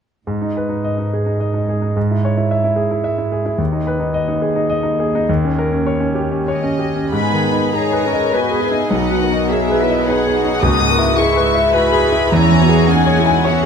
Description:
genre	classical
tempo	87-113 BPM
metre	3/4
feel	rubato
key	G# minor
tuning	A4 = 440 Hz
part	bright concert grand piano	melody	0.3-13.7 s	B1 to G#5	-16 LUFS	equal	none
part	warm symphonic cello section	bass	0.3-13.7 s	D#2 to B4	-23 LUFS	right 2 dB	none
part	warm symphonic violin section	melody	6.5-13.7 s	D#5 to D#6	-21 LUFS	left 5 dB	none
part	warm symphonic violin section	second line	7.1-13.7 s	F#4 to G#5	-22 LUFS	left 4 dB	none
part	dark studio viola section	accompaniment	7.1-13.7 s	G#3 to G#4	-21 LUFS	left 2 dB	none
room	light reverb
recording	close, detailed microphones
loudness	-14 LUFS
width	side -6 dB against mid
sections	0.3-7.1 A section; 7.1-13.7 B section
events	none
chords	0.3 G#m; 3.6 G#m/D#; 7.1 G#m; 8.9 G#m/B; 10.6 C#m7; 12.3 C#m/E

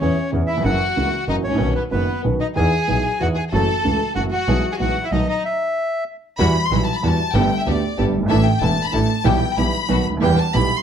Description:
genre	tango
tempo	188 BPM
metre	3/4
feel	rubato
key	E major, E minor from 6.4 s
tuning	A4 = 439 Hz
part	bandoneon	melody	0.0-6.0 s	B4 to A5	-24 LUFS	equal	slapback echo
part	clear chamber violin section	second line	0.0-10.8 s	B3 to C6	-24 LUFS	left 4 dB	none
part	warm grand piano	accompaniment	0.0-10.7 s	E1 to A4	-21 LUFS	right 3 dB	none
part	clear double bass	bass	0.0-10.7 s	E1 to E2	-22 LUFS	equal	none
part	rich studio string section	stabs	6.4-10.7 s	G3 to A4	-26 LUFS	equal	none
room	moderate club reverb, RT60 0.6 s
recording	dark, warm production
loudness	-17 LUFS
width	side -8 dB against mid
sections	0.0-6.4 A section; 6.4-10.8 B section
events	stop 5.4-6.4; violin section solo 6.4-10.8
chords	0.0 C#m7/E; 0.7 F#7; 1.6 Badd9; 2.6 Emaj7; 3.5 F#m7; 4.5 E/B; 5.1 B; 5.4 N.C.; 6.4 Emadd9; 7.3 Gadd9; 8.3 Asus4; 9.3 Em/B; 9.9 B; 10.2 Em

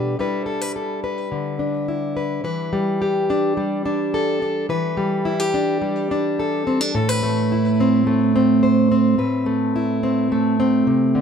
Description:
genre	folk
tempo	107 BPM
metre	4/4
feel	straight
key	unclear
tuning	A4 = 440 Hz
part	fingerpicked plugged-in steel-string acoustic guitar	solo	0.0-11.2 s	A2 to C5	-18 LUFS	equal	tape echo
room	moderate studio ambience, RT60 0.5 s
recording	band playing live in one room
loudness	-18 LUFS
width	side -7 dB against mid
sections	0.0-2.4 A section; 2.4-11.2 B section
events	none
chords	0.2 G6; 2.4 Em7; 6.9 Amadd9

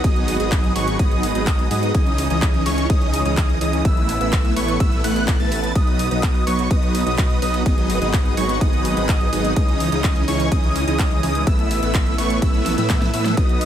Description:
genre	EDM, festival progressive house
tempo	126 BPM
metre	4/4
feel	straight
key	unclear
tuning	A4 = 440 Hz
part	lush unison pad	sustained chords	0.0-13.7 s	C#3 to B4	-27 LUFS	right 1 dB	chorus, sidechain pumping
part	wide unison lead	arpeggios	0.0-13.7 s	C#6 to A6	-27 LUFS	equal	analog chorus, sidechain pumping, ping-pong delay
part	big supersaw lead	riff	0.0-13.7 s	E3 to A5	-23 LUFS	right 1 dB	phaser, cassette tape, sidechain pumping, ping-pong delay
part	wide detuned saw bass	bass	0.0-13.7 s	G#1 to A2	-25 LUFS	equal	chorus, sidechain pumping
part	big-room dance drum kit	drums	0.0-13.7 s	handclaps, hi-hat, ride cymbal, snare drum	-29 LUFS	equal	overdrive, studio ambience
part	electronic kick drum	drums	0.0-13.5 s	none	-18 LUFS	equal	overdrive, studio ambience
room	digital ambience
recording	none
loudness	-16 LUFS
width	side -10 dB against mid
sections	0.0-13.7 A section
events	drum fill 12.7-13.4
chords	0.0 G#m7; 1.9 C#madd9; 3.9 Asus2; 5.8 B; 7.7 G#m7; 9.6 C#madd9; 11.5 Asus2

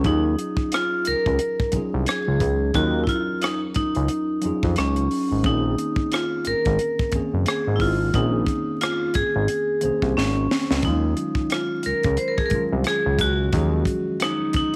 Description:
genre	R&B, neo-soul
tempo	89 BPM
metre	4/4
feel	swing 58% on 16ths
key	Eb dorian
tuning	A4 = 440 Hz
part	mellow tine electric piano	accompaniment	0.0-14.8 s	Eb3 to C5	-31 LUFS	equal	none
part	fat analog bass	bass	0.0-14.6 s	Gb1 to F2	-25 LUFS	equal	none
part	tight funk drum kit	drums	0.0-14.8 s	hi-hat, kick drum, rim click, snare drum	-28 LUFS	equal	none
part	vibraphone with hard mallets	melody	0.1-14.8 s	Db4 to C5	-26 LUFS	equal	slapback echo
room	moderate plate reverb, RT60 1.6 s, small room ambience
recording	vinyl crackle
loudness	-22 LUFS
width	mono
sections	0.0-14.8 A section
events	drum fill 10.2-10.8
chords	0.0 Ebm11; 5.4 Bbm11; 10.8 Ebm11

